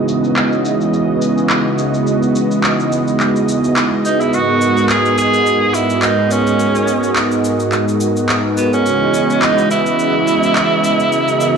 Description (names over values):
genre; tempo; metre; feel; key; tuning
nu-disco, nu disco; 106 BPM; 4/4; swing 55% on 16ths; unclear; A4 = 440 Hz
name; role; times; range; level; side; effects
warm analog pad; accompaniment; 0.0-11.6 s; G#2 to D#5; -18 LUFS; right 1 dB; chorus, vintage 12-bit sampler grit, tape echo
lush unison pad; sustained chords; 0.0-11.6 s; C#3 to D#5; -18 LUFS; right 1 dB; chorus
electronic shaker and handclaps; drums; 0.1-11.5 s; none; -21 LUFS; equal; low-pass filter on cymbals, studio ambience, low-pass filter on perc, low-pass filter on snare
bright tenor saxophone; melody; 4.1-11.6 s; B3 to G#4; -16 LUFS; right 2 dB; tape echo
room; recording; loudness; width
moderate echo chamber reverb, RT60 1.9 s, digital ambience; dry, gritty hardware recording, transformer saturation, cassette tape, small room ambience; -12 LUFS; side -6 dB against mid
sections
0.0-11.6 A section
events
none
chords
0.0 C#m11; 4.3 G#m7; 8.9 C#m11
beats
0.37 0.94 1.50 | 2.07 2.63 3.20 3.77 | 4.33 4.90 5.46 6.03 | 6.59 7.16 7.73 8.29 | 8.86 9.43 9.99 10.56 | 11.12